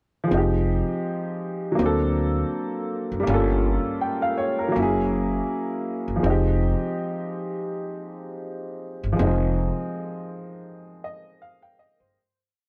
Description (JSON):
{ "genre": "lo-fi hip hop", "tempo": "81 BPM", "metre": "4/4", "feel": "swing 57% on 16ths", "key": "unclear", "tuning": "A4 = 440 Hz", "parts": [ { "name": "warm upright piano", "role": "accompaniment", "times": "0.2-12.4 s", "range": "F3 to G5", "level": "-27 LUFS", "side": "equal", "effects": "cassette tape" }, { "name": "upright bass", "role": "bass", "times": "0.3-12.1 s", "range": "F1 to D2", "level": "-26 LUFS", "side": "equal", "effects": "none" } ], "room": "light reverb", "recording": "cassette tape", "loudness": "-24 LUFS", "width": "mono", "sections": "0.3-12.2 A section", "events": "fade-out 9.2-12.2; upright piano fill 10.7-12.2", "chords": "0.3 Fm7; 1.8 D7b13; 3.3 Gm7b5; 4.8 Gb9; 6.2 Fm7" }